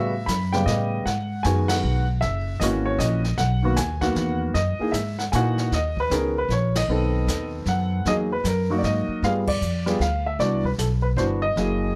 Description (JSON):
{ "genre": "jazz piano trio", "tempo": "154 BPM", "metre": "3/4", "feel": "swing 64% on 8ths", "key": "B major", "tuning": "A4 = 439 Hz", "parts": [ { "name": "warm upright piano", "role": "melody", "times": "0.0-12.0 s", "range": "C#3 to B5", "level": "-26 LUFS", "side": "equal", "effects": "plate reverb" }, { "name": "upright bass", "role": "bass", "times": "0.0-11.9 s", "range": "F#1 to A#2", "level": "-27 LUFS", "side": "equal", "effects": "none" }, { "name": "jazz brush drum kit", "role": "drums", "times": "0.3-12.0 s", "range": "brushed snare drum, crash cymbal, hi-hat, kick drum, ride cymbal, snare drum", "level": "-35 LUFS", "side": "equal", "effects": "none" } ], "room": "light reverb", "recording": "none", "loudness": "-23 LUFS", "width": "mono", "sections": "0.0-5.7 A section; 5.7-12.0 B section", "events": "band accent 1.6, 6.7, 9.4", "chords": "0.0 A13; 1.1 G#m7; 2.2 F#7; 3.4 Bmaj7; 4.6 F#13; 5.7 Badd9; 6.9 B7b9; 8.1 Emaj9#11; 9.2 G7b9; 10.4 Cmaj9#11" }